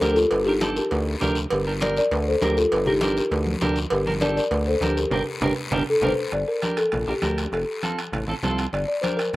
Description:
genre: latin, cumbia.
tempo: 200 BPM.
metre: 4/4.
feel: straight.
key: G minor.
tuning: A4 = 439 Hz.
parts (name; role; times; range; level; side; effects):
folk marimba with soft mallets; melody; 0.0-9.4 s; Eb4 to D5; -23 LUFS; left 1 dB; none.
clean electric guitar; accompaniment; 0.0-9.2 s; C4 to Bb4; -28 LUFS; right 2 dB; none.
rubbery square bass; bass; 0.0-9.4 s; F1 to D2; -26 LUFS; equal; none.
congas; percussion; 0.0-9.4 s; none; -30 LUFS; left 1 dB; none.
cowbell and timbales; percussion; 0.0-9.3 s; none; -30 LUFS; right 3 dB; none.
guiro; percussion; 0.0-9.4 s; none; -35 LUFS; left 4 dB; none.
room: little or no reverb.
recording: recorded outdoors, with no room sound.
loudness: -20 LUFS.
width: side -18 dB against mid.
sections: 0.0-6.3 A section; 6.3-9.4 B section.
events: band accent 5.1-6.3; drum fill 5.4-6.3.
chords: 0.0 Gm; 7.5 F; 8.7 Gm.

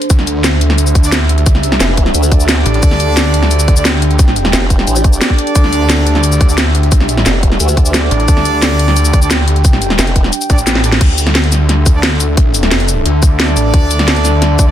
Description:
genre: dark technical drum and bass.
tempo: 176 BPM.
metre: 4/4.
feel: straight.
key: D minor.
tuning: A4 = 439 Hz.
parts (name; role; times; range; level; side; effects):
deep dark ambient pad; sustained chords; 0.0-14.7 s; D4 to G5; -19 LUFS; equal; chorus, built-in reverb, sidechain pumping.
drum and bass drum kit; drums; 0.0-14.7 s; crash cymbal, hi-hat, shaker, snare drum; -14 LUFS; equal; none.
snarling distorted saw bass; bass; 0.1-14.7 s; F1 to D2; -13 LUFS; equal; distortion, tube saturation, sidechain pumping.
electronic kick drum; drums; 0.1-14.7 s; none; -10 LUFS; equal; overdrive.
clear brass ensemble; stabs; 1.0-14.7 s; D4 to D5; -19 LUFS; right 2 dB; dub echo.
formant-sweep wobble bass; bass; 1.8-5.2, 7.3-10.3 s; F1 to D2; -14 LUFS; equal; chorus.
room: digital ambience.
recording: dense, heavily limited modern master.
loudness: -9 LUFS.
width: side -11 dB against mid.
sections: 0.0-11.0 A section; 11.0-14.7 A section.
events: drop 0.0-11.0, 11.0-14.7; drum fill 10.7-11.0; band accent 10.9.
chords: 0.0 D5; 11.0 Dm.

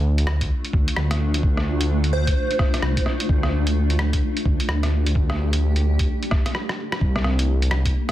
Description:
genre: future garage.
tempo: 129 BPM.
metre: 4/4.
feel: swing 62% on 16ths.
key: unclear.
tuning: A4 = 438 Hz.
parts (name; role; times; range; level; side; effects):
granular cloud pad; sustained chords; 0.5-8.1 s; A3 to C5; -28 LUFS; left 1 dB; built-in reverb, sidechain pumping.
dark detuned saw bass; bass; 0.0-7.9 s; C2 to D2; -20 LUFS; equal; sidechain pumping.
lo-fi sampler-style drum kit; drums; 0.2-8.1 s; hi-hat, rim click; -28 LUFS; equal; soft clipping on snare, small room ambience.
electronic kick drum; drums; 0.4-7.9 s; none; -22 LUFS; equal; small room ambience.
plucky unison lead; melody; 2.1-2.6 s; C5; -28 LUFS; right 2 dB; ensemble chorus, tape echo.
room: digital ambience.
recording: dense, heavily limited modern master.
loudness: -19 LUFS.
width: side -14 dB against mid.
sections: 0.0-7.0 A section; 7.0-8.1 B section.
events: drum fill 6.5-7.0; stop 6.5-7.0.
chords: 0.0 Dm; 7.0 Cm7.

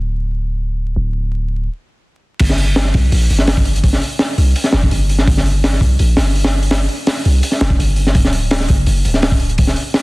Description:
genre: drum and bass, jungle.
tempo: 167 BPM.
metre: 4/4.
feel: straight.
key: unclear.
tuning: A4 = 439 Hz.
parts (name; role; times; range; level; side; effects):
long sustained 808-style bass; bass; 0.0-9.8 s; D1 to C2; -15 LUFS; equal; none.
crunchy breakbeat drum kit; drums; 2.4-10.0 s; crash cymbal, hi-hat, kick drum, snare drum; -15 LUFS; equal; none.
room: little or no reverb.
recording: dense, heavily limited modern master, vinyl crackle.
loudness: -13 LUFS.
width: side -23 dB against mid.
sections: 0.0-2.4 A section; 2.4-10.0 B section.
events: filter sweep 0.0-2.4; stop 1.7-2.4; drop 2.4-10.0.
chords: none.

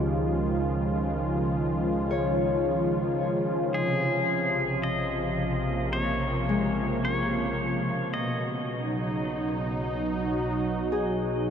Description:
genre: ambient.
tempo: 55 BPM.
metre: 4/4.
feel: straight.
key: unclear.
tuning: A4 = 437 Hz.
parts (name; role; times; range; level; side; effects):
warm analog pad; sustained chords; 0.0-11.5 s; Cb3 to Gb4; -26 LUFS; right 1 dB; chorus.
Celtic harp; arpeggios; 0.0-11.5 s; Ab3 to Db5; -33 LUFS; left 6 dB; diffuse ambient delay.
deep rumbling drone; bass; 0.0-11.5 s; Bb1 to Db2; -38 LUFS; equal; built-in reverb.
pedal steel guitar; melody; 3.7-11.5 s; Ab4 to Eb5; -32 LUFS; left 1 dB; diffuse ambient delay.
room: wet huge ambient reverb, RT60 8.8 s.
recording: none.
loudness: -25 LUFS.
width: side -8 dB against mid.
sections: 0.0-11.5 A section.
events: fade-out on synth drone 0.0-11.5.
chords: 0.0 Dbadd9; 3.8 Bbmadd9; 8.2 Cb.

